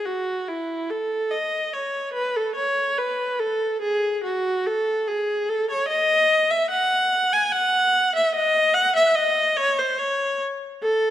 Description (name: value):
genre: classical, baroque-style suite movement for unaccompanied viola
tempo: 72 BPM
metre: 3/4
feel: rubato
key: unclear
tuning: A4 = 440 Hz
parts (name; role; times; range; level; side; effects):
- rich viola; solo; 0.0-11.1 s; E4 to G#5; -20 LUFS; equal; none
room: moderate scoring stage reverb, RT60 1.9 s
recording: none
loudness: -20 LUFS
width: side -12 dB against mid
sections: 0.0-11.1 A section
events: none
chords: none